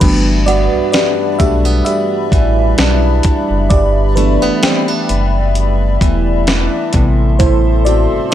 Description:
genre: contemporary R&B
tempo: 65 BPM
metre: 4/4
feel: swing 54% on 16ths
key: unclear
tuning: A4 = 443 Hz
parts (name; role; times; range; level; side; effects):
- FM electric piano with soft pad layer; accompaniment; 0.0-8.3 s; C3 to E5; -16 LUFS; equal; chorus, phaser
- hollow soft pad; sustained chords; 0.0-8.3 s; G3 to C6; -22 LUFS; left 3 dB; chorus
- picked steel-string acoustic guitar; arpeggios; 0.0-8.3 s; G2 to E4; -21 LUFS; right 3 dB; tape echo
- sub bass with octave; bass; 0.0-8.2 s; E1 to B1; -14 LUFS; equal; none
- crisp 8-bit digital drum machine; drums; 0.0-8.3 s; crash cymbal, hi-hat, kick drum, snare drum; -15 LUFS; equal; overdrive, vintage 12-bit sampler grit
- synth chime; texture; 0.5-6.7 s; F#5 to G5; -27 LUFS; right 1 dB; ensemble chorus, tape echo
room: little or no reverb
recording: dry, gritty hardware recording, tape stop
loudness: -11 LUFS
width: side -11 dB against mid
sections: 0.0-8.3 A section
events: FM electric piano solo 0.0-8.3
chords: 0.0 G6; 6.9 Am7

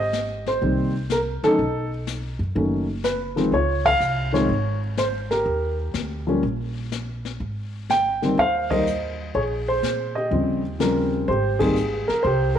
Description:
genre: jazz piano trio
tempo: 124 BPM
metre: 4/4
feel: swing 68% on 8ths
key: Ab major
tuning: A4 = 441 Hz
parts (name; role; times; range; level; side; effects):
- dark baby grand piano; melody; 0.0-12.6 s; Db3 to G5; -21 LUFS; equal; none
- upright bass; bass; 0.0-12.6 s; F#1 to Bb2; -28 LUFS; equal; none
- jazz brush drum kit; drums; 0.1-12.6 s; brushed snare drum, hi-hat, kick drum, ride cymbal, snare drum; -33 LUFS; left 6 dB; none
room: light reverb, small room ambience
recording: 1960s-style stereo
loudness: -20 LUFS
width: side -9 dB against mid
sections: 0.0-12.6 A section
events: band accent 3.8, 8.6, 11.5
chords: 0.0 Abmaj9; 1.6 B7; 3.5 Dbmaj7; 5.5 Eb; 7.4 Abmaj7; 9.3 Bbsus2; 10.3 Eb13; 11.3 Abmaj9

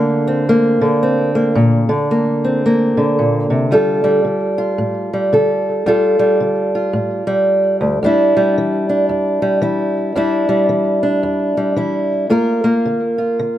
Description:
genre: folk, solo fingerstyle acoustic guitar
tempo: 112 BPM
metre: 4/4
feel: swing 61% on 8ths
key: D minor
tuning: A4 = 436 Hz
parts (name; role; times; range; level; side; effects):
- fingerpicked old ladder-braced acoustic guitar; solo; 0.0-13.6 s; D2 to Bb4; -13 LUFS; equal; tape echo
room: light reverb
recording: none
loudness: -13 LUFS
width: side -12 dB against mid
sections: 0.0-3.7 A section; 3.7-13.6 B section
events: none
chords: 0.0 Bbadd9; 3.7 Dm; 8.0 Em7; 12.3 Gm7

